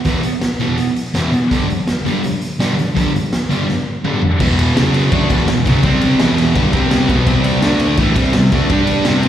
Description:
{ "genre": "garage rock duo or trio", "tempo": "167 BPM", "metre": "4/4", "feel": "straight", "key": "E minor", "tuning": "A4 = 440 Hz", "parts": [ { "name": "raw garage drum kit", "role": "drums", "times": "0.0-9.3 s", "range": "crash cymbal, hi-hat, kick drum, ride cymbal, snare drum, toms", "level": "-18 LUFS", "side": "equal", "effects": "none" }, { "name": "thick fuzz guitar", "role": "riff", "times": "0.1-9.3 s", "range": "E2 to G4", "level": "-14 LUFS", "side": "equal", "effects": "distortion, slapback echo" } ], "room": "light reverb", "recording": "live gig heard through the venue's PA, recital hall reverb", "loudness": "-13 LUFS", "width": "side -10 dB against mid", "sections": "0.0-4.4 A section; 4.4-9.3 B section", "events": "drum fill 3.7-4.4", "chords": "0.0 E5; 1.5 G5; 4.4 E5; 4.8 F#5; 5.1 E5; 5.8 C5; 6.2 Em; 6.7 C5; 7.1 B5; 7.3 C5; 7.6 D5; 8.0 C5; 8.7 G5" }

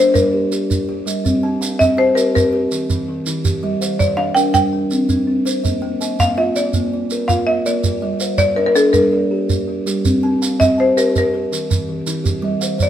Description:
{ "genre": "southern african traditional, mbira-style interlocking cycle", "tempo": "109 BPM (dotted quarters)", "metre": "12/8", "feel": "straight", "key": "C equiheptatonic", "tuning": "A4 = 440 Hz", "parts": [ { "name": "buzzing marimba with medium hard mallets", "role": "melody", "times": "0.0-12.9 s", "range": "A4-43c to G5", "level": "-16 LUFS", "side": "left 1 dB", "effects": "none" }, { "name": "buzzing kalimba", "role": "arpeggios", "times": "0.0-12.9 s", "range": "Eb3+43c to A5-43c", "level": "-20 LUFS", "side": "left 1 dB", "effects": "none" }, { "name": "buzzing kalimba", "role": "arpeggios", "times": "0.0-12.9 s", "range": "Eb3+43c to Bb5+29c", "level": "-23 LUFS", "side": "right 3 dB", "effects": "none" }, { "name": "shekere", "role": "percussion", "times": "0.2-12.9 s", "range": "none", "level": "-22 LUFS", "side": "right 3 dB", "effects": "none" } ], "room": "moderate stone room reverb, RT60 1.0 s", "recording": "band playing live in one room", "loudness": "-15 LUFS", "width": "side -10 dB against mid", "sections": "0.0-1.2 A section; 1.2-12.9 B section", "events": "none", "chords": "0.0 Gm; 1.2 Cm; 2.3 Eb; 3.4 Gm; 4.5 Cm; 5.6 Bb; 7.8 Gm; 10.0 Cm; 11.2 Eb; 12.3 N.C." }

